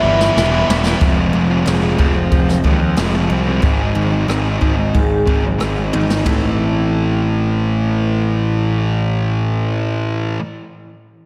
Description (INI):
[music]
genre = quiet-loud alternative rock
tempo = 91 BPM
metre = 4/4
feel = straight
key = unclear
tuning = A4 = 440 Hz
[part]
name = clean electric guitar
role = melody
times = 0.0-0.7 s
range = E5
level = -21 LUFS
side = equal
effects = slapback echo, tape echo
[part]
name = biting overdriven guitar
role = riff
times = 0.0-1.0 s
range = E3 to E4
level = -26 LUFS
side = equal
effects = slapback echo
[part]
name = thick fuzz guitar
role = riff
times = 0.0-10.4 s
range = G#2 to F4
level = -21 LUFS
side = equal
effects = distortion, slapback echo
[part]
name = fuzz picked electric bass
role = bass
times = 0.0-10.3 s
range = E1 to D#2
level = -21 LUFS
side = equal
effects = overdrive
[part]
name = jazz brush drum kit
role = drums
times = 0.2-6.4 s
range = hi-hat, kick drum, rim click, snare drum, toms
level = -21 LUFS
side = equal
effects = none
[part]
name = picked steel-string acoustic guitar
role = arpeggios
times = 1.0-10.4 s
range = F2 to A4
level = -25 LUFS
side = equal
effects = slapback echo, tape echo
[sound]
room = wet lush hall reverb, RT60 2.4 s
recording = big arena sound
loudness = -16 LUFS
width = mono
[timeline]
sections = 0.0-1.0 A section; 1.0-6.3 B section; 6.3-8.9 C section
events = drum fill 0.0-1.0, 5.9-6.3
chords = 0.0 Em; 1.0 Fm; 3.6 G#; 6.3 Am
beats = 0.36 | 1.01 1.66 2.32 2.97 | 3.63 4.29 4.94 5.60 | 6.26 6.91 7.57 8.23